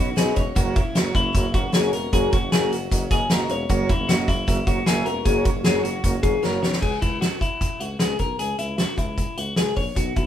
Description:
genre	jangly indie pop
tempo	153 BPM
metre	4/4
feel	straight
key	unclear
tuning	A4 = 444 Hz
part	overdriven combo organ	accompaniment	0.0-6.7 s	D#4 to E5	-30 LUFS	right 5 dB	none
part	picked steel-string acoustic guitar	accompaniment	0.0-6.8 s	F#2 to F#4	-31 LUFS	right 4 dB	none
part	twelve-string electric guitar	arpeggios	0.0-10.3 s	E4 to C#5	-25 LUFS	left 4 dB	none
part	mellow tuba	bass	0.0-10.3 s	E1 to C#2	-29 LUFS	equal	none
part	loose indie drum kit	drums	0.2-10.3 s	crash cymbal, hi-hat, kick drum, snare drum	-22 LUFS	equal	none
room	moderate small room reverb, RT60 0.5 s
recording	band playing live in one room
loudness	-19 LUFS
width	side -10 dB against mid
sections	0.0-6.8 A section; 6.8-10.3 B section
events	drum fill 6.4-6.8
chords	0.0 Badd9; 6.8 C#m

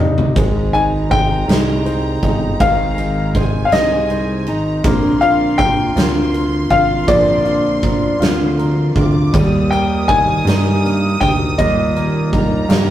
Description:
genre	six-eight pop ballad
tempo	54 BPM (dotted quarters)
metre	6/8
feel	straight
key	Eb major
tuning	A4 = 440 Hz
part	clear concert grand piano	accompaniment	0.0-12.9 s	G2 to C5	-22 LUFS	equal	none
part	huge arena drum kit	drums	0.2-12.9 s	kick drum, ride cymbal, snare drum, toms	-19 LUFS	equal	none
part	clear studio violin section	second line	0.4-12.9 s	Ab5 to Eb6	-28 LUFS	right 1 dB	none
part	fingerpicked steel-string acoustic guitar	arpeggios	0.4-12.9 s	Ab2 to Bb4	-22 LUFS	equal	none
part	chorused synth bass	bass	0.4-12.9 s	G1 to G2	-19 LUFS	right 1 dB	none
part	clear concert grand piano	melody	0.7-12.7 s	D5 to Ab5	-17 LUFS	left 2 dB	none
room	wet stone room reverb, RT60 1.0 s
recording	rough rehearsal-room recording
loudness	-13 LUFS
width	side -12 dB against mid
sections	0.0-12.9 A section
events	drum fill 0.0-0.4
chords	0.4 Ab; 4.8 Bbadd9; 9.3 Eb

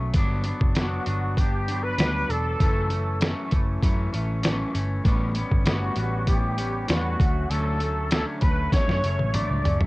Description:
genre	indie pop, bedroom pop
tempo	98 BPM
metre	4/4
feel	straight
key	D major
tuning	A4 = 440 Hz
part	electric guitar at the edge of break-up	accompaniment	0.0-9.9 s	F#2 to D4	-30 LUFS	left 1 dB	lush chorus, vibrato effect, cassette tape
part	vintage muted picked electric bass	bass	0.0-9.9 s	E1 to F#2	-27 LUFS	equal	none
part	lo-fi sampler-style drum kit	drums	0.1-9.9 s	hi-hat, kick drum, snare drum, toms	-23 LUFS	equal	cassette tape
part	breathy trumpet	melody	0.8-9.8 s	F#4 to D5	-29 LUFS	equal	ensemble chorus, tape echo
room	light reverb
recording	home recording on cassette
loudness	-22 LUFS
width	side -21 dB against mid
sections	0.0-9.9 A section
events	drum fill 8.7-9.9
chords	0.1 Gmaj7; 2.6 F#m7; 5.1 A9; 7.2 Dmaj7

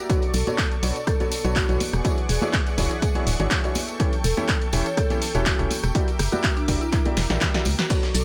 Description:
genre	piano house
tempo	123 BPM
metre	4/4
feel	swing 53% on 16ths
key	unclear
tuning	A4 = 443 Hz
part	marimba with medium mallets	melody	0.0-8.2 s	D4 to D5	-33 LUFS	equal	digital delay
part	analog string pad	sustained chords	0.0-8.2 s	G#4 to D6	-36 LUFS	equal	ensemble chorus, sidechain pumping
part	granular cloud pad	texture	0.0-8.2 s	B4 to C#6	-46 LUFS	equal	none
part	clear upright piano	riff	0.1-8.0 s	B2 to D5	-32 LUFS	equal	sidechain pumping, digital delay
part	electronic kick drum	drums	0.1-8.0 s	none	-26 LUFS	equal	overdrive
part	punchy analog drum machine	drums	0.1-8.2 s	crash cymbal, handclaps, hi-hat, rim click, shaker, snare drum	-30 LUFS	equal	none
part	tambourine and congas	percussion	0.1-8.2 s	none	-36 LUFS	equal	none
part	organ-like FM bass	bass	0.3-8.2 s	D1 to C#2	-26 LUFS	equal	sidechain pumping
part	dusty soul sampler-style drum kit	drums	7.9-8.2 s	hi-hat, snare drum	-38 LUFS	equal	none
room	digital ambience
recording	none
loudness	-23 LUFS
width	mono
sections	0.0-8.2 A section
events	drum fill 7.2-7.9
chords	0.1 Bm9; 1.8 E13; 3.8 A7/E; 6.0 F#7b9b13

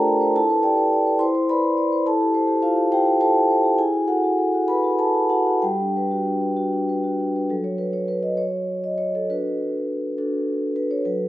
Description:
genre	classical, contemporary piece for solo vibraphone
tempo	62-71 BPM (dotted quarters)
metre	6/8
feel	rubato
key	unclear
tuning	A4 = 438 Hz
part	vibraphone with soft mallets	solo	0.0-11.3 s	F#3 to C6	-19 LUFS	equal	none
room	light reverb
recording	close, detailed microphones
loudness	-19 LUFS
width	side -15 dB against mid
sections	0.0-7.5 A section; 7.5-11.3 B section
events	none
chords	0.4 Em7; 1.2 Cmaj9/E; 2.1 G9sus4/E; 3.8 Esus24; 5.6 Gmaj7; 7.5 N.C.; 9.3 D

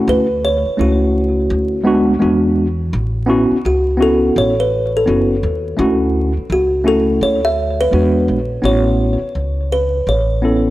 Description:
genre	hip hop, jazz-hop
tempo	84 BPM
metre	4/4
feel	swing 62% on 16ths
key	A major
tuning	A4 = 442 Hz
part	mellow tine electric piano	accompaniment	0.0-10.7 s	G#3 to A4	-15 LUFS	equal	medium stereo tremolo
part	upright bass	bass	0.0-10.7 s	F#1 to E2	-19 LUFS	equal	none
part	kalimba	melody	0.1-10.7 s	F#4 to E5	-18 LUFS	equal	analog delay
room	light reverb, studio ambience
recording	dry, gritty hardware recording, vinyl crackle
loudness	-13 LUFS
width	side -16 dB against mid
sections	0.0-2.9 A section; 2.9-10.7 B section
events	kalimba solo 2.9-10.7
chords	0.1 Dmaj9; 2.2 E9; 2.9 A69; 5.8 Dmaj9; 7.9 E9; 8.6 A69

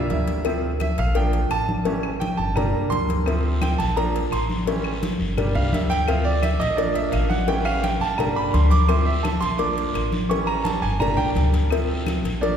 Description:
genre	latin, salsa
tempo	171 BPM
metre	4/4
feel	straight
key	D minor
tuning	A4 = 438 Hz
part	bright grand piano	accompaniment	0.0-12.6 s	E3 to D6	-24 LUFS	right 3 dB	none
part	upright bass	bass	0.0-12.6 s	G1 to D2	-24 LUFS	left 1 dB	none
part	congas	percussion	0.1-12.6 s	none	-28 LUFS	left 1 dB	none
part	cowbell	percussion	0.1-12.6 s	none	-29 LUFS	left 5 dB	none
part	claves	percussion	0.5-12.2 s	none	-39 LUFS	left 3 dB	none
part	guiro	percussion	3.3-12.6 s	none	-38 LUFS	left 2 dB	none
room	wet concert hall reverb, RT60 2.2 s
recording	recorded in a church or concert hall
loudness	-19 LUFS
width	side -8 dB against mid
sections	0.0-12.6 A section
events	grand piano solo 0.0-12.6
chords	0.5 Dm7; 1.2 Bb; 1.9 A7; 2.6 Gm; 3.3 Dm7; 4.0 Bb; 4.7 A7; 5.4 Gm; 6.1 Dm7; 6.8 Bb; 7.5 A7; 8.2 Gm; 8.9 Dm7; 9.6 Bb; 10.3 A7; 11.0 Gm; 11.7 Dm7

